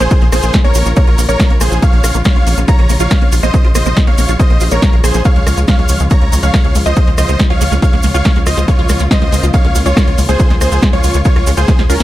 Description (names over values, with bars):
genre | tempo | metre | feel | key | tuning
uplifting trance | 140 BPM | 4/4 | straight | unclear | A4 = 441 Hz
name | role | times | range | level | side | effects
big supersaw lead | melody | 0.0-12.0 s | Db4 to Bb5 | -19 LUFS | equal | cassette tape, sidechain pumping, dub echo
wide unison pluck | second line | 0.0-12.0 s | Bb4 to Bb5 | -24 LUFS | equal | sidechain pumping, tape echo
warm studio string section | sustained chords | 0.0-12.0 s | Db3 to F4 | -24 LUFS | left 1 dB | sidechain pumping
liquid acid bass | arpeggios | 0.0-12.0 s | Ab3 to F4 | -23 LUFS | right 2 dB | phaser, analog chorus, sidechain pumping, tape echo
tight sequencer bass | bass | 0.0-12.0 s | Bb1 to Db2 | -14 LUFS | equal | sidechain pumping
house drum kit | drums | 0.0-12.0 s | hi-hat, rim click, snare drum | -19 LUFS | equal | sidechain pumping on hats, sidechain pumping on cymbals
cabasa | percussion | 0.0-12.0 s | none | -25 LUFS | right 4 dB | none
electronic kick drum | drums | 0.1-11.8 s | none | -12 LUFS | equal | none
room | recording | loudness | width
little or no reverb | none | -9 LUFS | side -15 dB against mid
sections
0.0-12.0 A section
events
drum fill 11.7-12.0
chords
0.0 Bbm; 5.3 Db